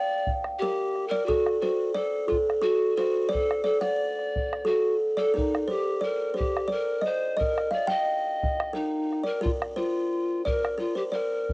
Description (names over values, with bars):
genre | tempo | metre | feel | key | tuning
andean folk, Andean ensemble | 88 BPM | 3/4 | straight | unclear | A4 = 435 Hz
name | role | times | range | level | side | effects
buzzing kalimba | melody | 0.0-11.5 s | A4 to G5 | -26 LUFS | right 1 dB | cassette tape
breathy bright pan flute | second line | 0.0-11.5 s | Eb4 to Eb5 | -28 LUFS | left 1 dB | cassette tape
bombo | percussion | 0.3-11.5 s | none | -30 LUFS | right 1 dB | none
room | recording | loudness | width
light reverb | home recording on cassette | -24 LUFS | side -24 dB against mid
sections
0.0-11.5 A section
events
none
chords
none